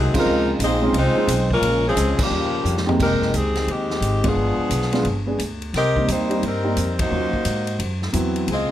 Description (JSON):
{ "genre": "jazz, big band swing", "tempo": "175 BPM", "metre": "4/4", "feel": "swing 64% on 8ths", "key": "F minor from 3.0 s", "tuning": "A4 = 441 Hz", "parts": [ { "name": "warm saxophone section", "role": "melody", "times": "0.0-8.7 s", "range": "Eb3 to Eb5", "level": "-22 LUFS", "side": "left 1 dB", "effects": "none" }, { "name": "warm trombone section", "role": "second line", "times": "0.0-2.9 s", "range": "Bb2 to Eb4", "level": "-26 LUFS", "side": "right 1 dB", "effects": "none" }, { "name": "upright bass", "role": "bass", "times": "0.0-8.7 s", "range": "F1 to Ab2", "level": "-24 LUFS", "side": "equal", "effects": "none" }, { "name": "warm grand piano", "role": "accompaniment", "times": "0.1-8.7 s", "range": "F2 to Ab4", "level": "-23 LUFS", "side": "right 1 dB", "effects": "none" }, { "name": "swinging big-band drum kit", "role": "drums", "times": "0.1-8.6 s", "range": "crash cymbal, hi-hat, kick drum, ride cymbal, snare drum, toms", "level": "-27 LUFS", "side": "equal", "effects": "none" } ], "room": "light reverb", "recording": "none", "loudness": "-18 LUFS", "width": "side -12 dB against mid", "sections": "0.0-3.0 A section; 3.0-8.7 B section", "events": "band accent 0.1, 2.1, 4.2, 6.9; drum fill 2.7-3.0", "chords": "0.3 Dbmaj9; 1.6 Bbm9; 2.3 Eb9; 3.0 Fm11; 4.4 G7b9; 5.7 Cm7; 7.1 Ebm7; 7.8 Cmaj7#11", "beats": "| 0.27 0.61 0.95 1.29 | 1.63 1.97 2.32 2.66 | 3.00 3.34 3.68 4.03 | 4.37 4.71 5.05 5.39 | 5.74 6.08 6.42 6.76 | 7.11 7.45 7.79 8.13 | 8.48" }